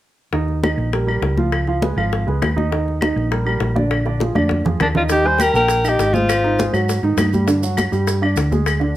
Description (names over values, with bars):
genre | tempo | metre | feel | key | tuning
Afro-Cuban jazz | 202 BPM | 4/4 | straight | Eb major | A4 = 437 Hz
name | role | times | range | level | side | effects
dark baby grand piano | accompaniment | 0.3-8.9 s | D3 to F5 | -22 LUFS | right 4 dB | none
hollow-body short-scale fingered electric bass | bass | 0.3-9.0 s | Ab1 to Ab2 | -20 LUFS | equal | none
bongos | percussion | 0.3-9.0 s | none | -27 LUFS | left 7 dB | none
congas | percussion | 0.3-9.0 s | none | -24 LUFS | left 1 dB | none
claves | percussion | 0.6-8.8 s | none | -28 LUFS | left 2 dB | none
clear alto saxophone | melody | 4.8-6.7 s | D4 to C5 | -18 LUFS | equal | none
mellow hollow jazz flute | second line | 4.8-6.7 s | Bb4 to Ab5 | -21 LUFS | left 3 dB | none
maracas | percussion | 5.1-8.8 s | none | -32 LUFS | right 7 dB | none
room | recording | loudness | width
light reverb | none | -16 LUFS | side -14 dB against mid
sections
0.3-5.1 A section; 5.1-9.0 B section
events
drum fill 4.2-5.1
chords
0.3 Eb; 1.5 Db7; 2.7 Eb; 3.9 Bb7; 5.1 Eb; 6.3 Ab6; 7.5 G5